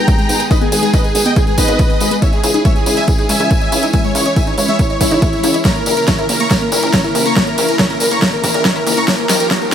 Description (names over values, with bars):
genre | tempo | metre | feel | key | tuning
uplifting trance | 140 BPM | 4/4 | straight | unclear | A4 = 440 Hz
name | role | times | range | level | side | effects
dense compressed supersaw | melody | 0.0-9.7 s | E4 to C#6 | -17 LUFS | equal | cassette tape, sidechain pumping, dub echo
lush unison pad | sustained chords | 0.0-9.7 s | C#3 to G#4 | -22 LUFS | equal | chorus, sidechain pumping
plucky analog bass | bass | 0.0-9.7 s | G#1 to D#2 | -22 LUFS | equal | sidechain pumping, high-pass filter
wide unison pluck | arpeggios | 0.1-9.7 s | G#3 to A#5 | -22 LUFS | moving between left 10 dB and right 4 dB | auto-pan, sidechain pumping, dub echo
big-room dance drum kit | drums | 0.1-9.7 s | hi-hat, snare drum | -19 LUFS | right 1 dB | none
electronic kick drum | drums | 0.1-9.6 s | none | -15 LUFS | equal | none
tambourine | percussion | 0.1-9.7 s | none | -23 LUFS | left 3 dB | none
riser | sound effects | 6.9-9.7 s | none | -28 LUFS | right 1 dB | none
room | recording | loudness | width
digital ambience | high-pass filter | -11 LUFS | side -9 dB against mid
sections
0.0-9.7 A section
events
build-up 0.0-9.7; filter sweep on synth arpeggio sound 0.0-9.7; filter sweep 0.0-9.7; drum fill 5.7-9.7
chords
0.0 G#madd9; 2.2 C#madd9; 5.7 A#dim; 9.1 D#